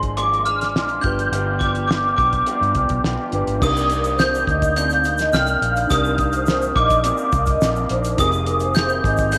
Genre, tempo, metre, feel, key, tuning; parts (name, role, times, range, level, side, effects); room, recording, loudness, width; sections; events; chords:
indie pop, bedroom pop; 105 BPM; 4/4; straight; C minor; A4 = 440 Hz
glockenspiel with hard plastic mallets; melody; 0.0-9.4 s; C6 to G6; -22 LUFS; equal; ensemble chorus, slapback echo
electric guitar through a small old amp; accompaniment; 0.0-9.4 s; F2 to Ab4; -29 LUFS; equal; analog chorus, warbly pitch drift
mellow reed electric piano; accompaniment; 0.0-9.4 s; D4 to C5; -32 LUFS; equal
vintage muted fingered electric bass; bass; 0.0-9.4 s; F1 to G2; -27 LUFS; equal; transformer saturation
cloth-damped thuddy drum kit; drums; 0.0-9.4 s; crash cymbal, hi-hat, kick drum, snare drum; -26 LUFS; equal
vibraphone with medium mallets; second line; 3.6-9.2 s; Bb4 to F5; -28 LUFS; equal; ensemble chorus, slapback echo
egg shaker; percussion; 3.6-9.4 s; -43 LUFS; equal
moderate spring reverb, RT60 2.8 s; -19 LUFS; mono
0.0-3.6 A section; 3.6-9.4 B section
0.0 Bb7; 1.0 G7; 3.6 Cm9; 8.2 Fm11